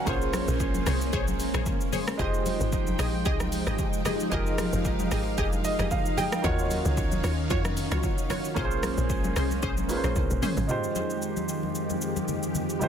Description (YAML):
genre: amapiano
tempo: 113 BPM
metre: 4/4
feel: swing 55% on 16ths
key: F minor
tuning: A4 = 440 Hz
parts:
  - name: clear grand piano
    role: accompaniment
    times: 0.0-12.9 s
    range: G3 to G5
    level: -32 LUFS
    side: right 4 dB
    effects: none
  - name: string machine, violas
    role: sustained chords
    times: 0.0-12.9 s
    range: F2 to G5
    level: -32 LUFS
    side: left 1 dB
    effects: ensemble chorus
  - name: punchy chord stab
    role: stabs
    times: 0.0-10.5 s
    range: Db4 to Eb5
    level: -34 LUFS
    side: left 1 dB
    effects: chorus, digital delay
  - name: tight log drum bass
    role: bass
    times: 0.1-10.7 s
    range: F1 to F2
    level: -30 LUFS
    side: equal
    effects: none
  - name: deep house drum kit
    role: drums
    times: 0.1-12.9 s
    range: hi-hat, kick drum, rim click, shaker, toms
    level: -31 LUFS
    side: equal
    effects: overdrive
  - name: congas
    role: percussion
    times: 0.1-12.9 s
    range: none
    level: -36 LUFS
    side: left 2 dB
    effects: none
room: light reverb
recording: dense, heavily limited modern master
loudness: -25 LUFS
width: side -8 dB against mid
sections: 0.0-10.7 A section; 10.7-12.9 B section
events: drop 0.0-10.7; grand piano fill 5.4-6.4; drum fill 10.2-10.7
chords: 0.1 Bbm9; 2.2 Fm9; 6.4 Ebm9; 8.6 Bbm9; 10.7 Fm9